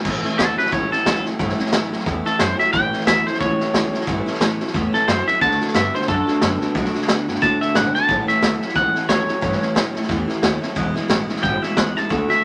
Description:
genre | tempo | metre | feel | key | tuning
rockabilly | 179 BPM | 4/4 | swing 58% on 8ths | A mixolydian | A4 = 438 Hz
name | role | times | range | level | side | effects
twangy electric guitar | melody | 0.0-12.4 s | A4 to A5 | -22 LUFS | equal | none
picked steel-string acoustic guitar | accompaniment | 0.0-12.4 s | E2 to F#4 | -28 LUFS | equal | none
electric guitar through a small old amp | riff | 0.0-12.4 s | E2 to B3 | -29 LUFS | equal | phaser
upright bass | bass | 0.1-12.3 s | E1 to A2 | -30 LUFS | equal | none
vintage drum kit | drums | 0.1-12.3 s | crash cymbal, hi-hat, kick drum, snare drum | -24 LUFS | equal | none
room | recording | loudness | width
wet studio reverb, RT60 0.5 s | none | -19 LUFS | mono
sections
0.1-12.4 A section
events
clean electric guitar solo 0.1-12.4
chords
0.1 A; 5.4 D; 8.1 A; 10.8 E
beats
| 0.05 0.39 0.72 1.06 | 1.39 1.73 2.06 2.40 | 2.73 3.07 3.40 3.74 | 4.07 4.41 4.74 5.08 | 5.41 5.75 6.08 6.42 | 6.75 7.08 7.42 7.75 | 8.09 8.42 8.76 9.09 | 9.43 9.76 10.09 10.43 | 10.76 11.10 11.43 11.76 | 12.10 12.43

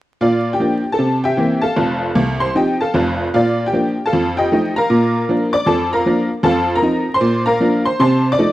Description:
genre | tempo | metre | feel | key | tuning
jazz, stride piano | 154 BPM | 4/4 | swing 63% on 8ths | Bb major | A4 = 439 Hz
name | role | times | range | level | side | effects
tack piano | solo | 0.2-8.5 s | F1 to D6 | -14 LUFS | equal | none
room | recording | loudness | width
small room reverb | dry, close 1970s-style studio recording, vinyl crackle | -14 LUFS | side -15 dB against mid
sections
0.2-8.5 A section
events
none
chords
0.2 Bb; 1.0 C7; 1.8 F7; 3.3 Bb; 4.1 F9; 4.9 Bb; 6.4 F7; 7.2 Bb; 8.0 F7/C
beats
| 0.21 0.60 0.99 1.38 | 1.77 2.16 2.55 2.94 | 3.33 3.72 4.11 4.50 | 4.89 5.27 5.66 6.05 | 6.44 6.83 7.22 7.60 | 7.99 8.38

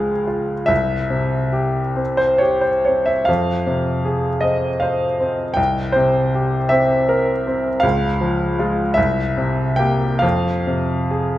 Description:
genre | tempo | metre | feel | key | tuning
classical, romantic nocturne for solo piano | 44-54 BPM (dotted quarters) | 6/8 | rubato | unclear | A4 = 441 Hz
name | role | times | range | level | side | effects
bright baby grand piano | solo | 0.0-11.4 s | C2 to G5 | -16 LUFS | equal | none
room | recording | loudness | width
moderate recital hall reverb, RT60 1.7 s | none | -16 LUFS | side -14 dB against mid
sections
0.0-11.4 A section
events
none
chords
0.0 Db; 0.7 C; 3.3 Fm; 5.6 C7; 7.8 Db; 9.0 C7; 10.2 Fm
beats
| 0.70 2.00 | 3.28 4.45 | 5.58 6.71 | 7.83 8.97 | 10.23

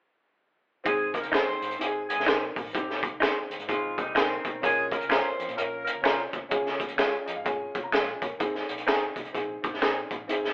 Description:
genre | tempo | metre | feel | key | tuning
uptempo 1960s-style soul | 127 BPM | 4/4 | swing 61% on 8ths | Ab major | A4 = 440 Hz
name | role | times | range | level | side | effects
clear upright piano | accompaniment | 0.8-10.5 s | C4 to Bb5 | -32 LUFS | equal | none
warm horn section | second line | 0.9-6.0 s | Ab3 to C5 | -29 LUFS | equal | none
hollow-body short-scale picked electric bass | bass | 0.9-10.5 s | Ab1 to Bb2 | -51 LUFS | equal | none
crunchy breakbeat drum kit | drums | 0.9-10.5 s | hi-hat, kick drum, snare drum | -28 LUFS | equal | none
direct-recorded clean electric guitar | stabs | 1.3-10.0 s | Ab3 to C5 | -30 LUFS | equal | none
finger snap | percussion | 1.3-10.0 s | none | -31 LUFS | equal | none
electric guitar through a small old amp | riff | 3.7-4.6 s | Eb3 to F4 | -32 LUFS | equal | none
room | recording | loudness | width
moderate stone room reverb, RT60 0.9 s | band playing live in one room, telephone sound | -25 LUFS | side -27 dB against mid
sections
0.9-8.4 A section; 8.4-10.5 B section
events
upright piano fill 7.0-8.4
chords
0.9 Ab; 4.6 Bbm; 6.5 Db; 8.4 Ab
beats
| 0.85 1.33 1.80 2.27 | 2.74 3.21 3.69 4.16 | 4.63 5.10 5.58 6.05 | 6.52 6.99 7.46 7.93 | 8.40 8.88 9.35 9.82 | 10.29

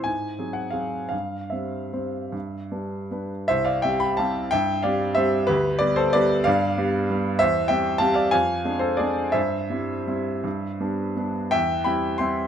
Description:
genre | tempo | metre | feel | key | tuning
classical, piano waltz | 144-205 BPM | 3/4 | rubato | C major | A4 = 440 Hz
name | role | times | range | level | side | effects
warm grand piano | solo | 0.0-12.5 s | C2 to C6 | -21 LUFS | equal | none
room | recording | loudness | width
light reverb | minimal, uncompressed stereo recording | -21 LUFS | side -8 dB against mid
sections
0.0-3.5 A section; 3.5-12.5 B section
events
none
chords
0.1 Ab7; 1.1 C/G; 2.3 G; 3.5 C; 5.5 G7/D; 7.4 C/E; 8.3 Dm7b5/F; 9.4 C/G; 10.5 G; 11.5 C/E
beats
| 0.07 0.39 0.75 | 1.12 1.53 1.95 | 2.34 2.73 3.12 | 3.50 3.85 4.19 | 4.52 4.85 5.18 | 5.50 5.82 6.15 | 6.47 6.78 7.10 | 7.41 7.70 8.01 | 8.33 8.65 9.01 | 9.37 9.72 10.09 | 10.45 10.82 11.18 | 11.54 11.87 12.21

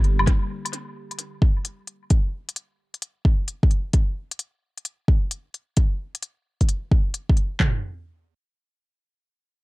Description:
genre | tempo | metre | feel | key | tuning
future garage | 131 BPM | 4/4 | swing 66% on 16ths | none | none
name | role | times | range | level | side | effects
electronic hi-hat and woodblock | drums | 0.0-7.5 s | none | -28 LUFS | left 2 dB | tape echo
organic electronic drum kit | drums | 0.3-7.7 s | handclaps, kick drum, toms | -19 LUFS | equal | none
room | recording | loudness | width
little or no reverb | echo-heavy mix | -20 LUFS | side -22 dB against mid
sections
0.0-7.6 A section; 7.6-9.6 B section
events
none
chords
none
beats
| 0.27 0.73 1.19 1.65 | 2.10 2.56 3.02 3.48 | 3.94 4.39 4.85 5.31 | 5.77 6.23 6.68 7.14 | 7.60

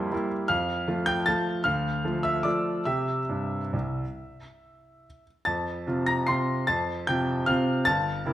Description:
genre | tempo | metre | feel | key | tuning
classical, piano waltz | 134-166 BPM | 3/4 | rubato | F major | A4 = 440 Hz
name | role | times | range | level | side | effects
clear grand piano | solo | 0.0-8.3 s | G1 to C7 | -24 LUFS | equal | none
room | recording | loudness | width
moderate recital hall reverb, RT60 1.4 s | none | -24 LUFS | side -13 dB against mid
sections
0.0-8.3 A section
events
none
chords
0.5 F; 1.7 Dm; 2.9 C; 5.5 F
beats
0.12 | 0.50 0.87 1.26 | 1.65 2.04 2.45 | 2.87 3.30 3.74 | 4.17 4.60 5.05 | 5.47 5.87 6.29 | 6.69 7.08 7.49 | 7.87 8.26

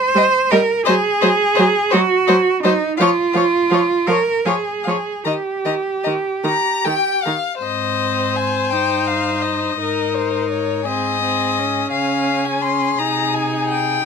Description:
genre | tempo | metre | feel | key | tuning
classical, slow romantic movement for string quartet | 49-58 BPM (dotted quarters) | 6/8 | rubato | Ab major | A4 = 440 Hz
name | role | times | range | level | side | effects
warm cello | bass | 0.0-14.0 s | G2 to C5 | -19 LUFS | right 4 dB | none
warm viola | accompaniment | 0.1-14.0 s | Eb3 to Eb4 | -21 LUFS | right 2 dB | none
rich violin | melody | 0.2-14.1 s | C5 to C6 | -22 LUFS | left 8 dB | none
warm violin | second line | 0.2-14.0 s | Ab4 to Bb5 | -21 LUFS | left 5 dB | none
room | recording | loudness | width
little or no reverb | close, detailed microphones | -15 LUFS | side -6 dB against mid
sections
0.0-7.6 A section; 7.6-14.1 B section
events
none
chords
0.0 Eb/G (rootless); 0.9 Ab7/Gb; 3.0 Db/F; 5.2 Eb; 7.6 Ab; 8.7 Eb/G; 9.8 Ab; 11.9 Db; 13.0 Ab/C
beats
| 0.86 1.92 | 2.98 4.07 | 5.25 6.45 | 7.62 8.71 | 9.79 10.87 | 11.93 13.00

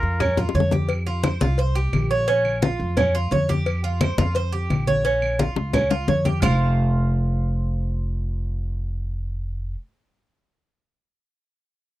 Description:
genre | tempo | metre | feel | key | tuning
latin, Cuban son and guajira | 174 BPM | 4/4 | straight | unclear | A4 = 440 Hz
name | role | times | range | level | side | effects
trumpet with plunger mute | melody | 0.0-0.5 s | Bb4 | -28 LUFS | left 1 dB | none
Cuban tres | arpeggios | 0.0-9.7 s | Db4 to F5 | -24 LUFS | right 3 dB | none
upright bass | bass | 0.0-9.7 s | F1 to F2 | -23 LUFS | equal | none
bongos and cowbell | percussion | 0.0-6.5 s | none | -27 LUFS | left 7 dB | none
congas | percussion | 0.0-6.5 s | none | -24 LUFS | left 2 dB | none
claves | percussion | 0.2-6.5 s | none | -35 LUFS | right 5 dB | none
room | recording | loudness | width
little or no reverb | dry, close 1970s-style studio recording | -20 LUFS | side -15 dB against mid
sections
0.9-6.4 A section; 6.4-9.2 B section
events
drum fill 0.4-0.9, 5.6-6.4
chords
0.0 Bbm; 0.9 Fsus2; 2.3 Bbm; 3.7 Fsus2; 5.0 Bbm; 6.4 F5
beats
0.20 0.55 | 0.90 1.24 1.59 1.93 | 2.28 2.63 2.97 3.32 | 3.66 4.01 4.36 4.70 | 5.05 5.39 5.74 6.08 | 6.43 6.77 7.12 7.46 | 7.81 8.15 8.49 8.84

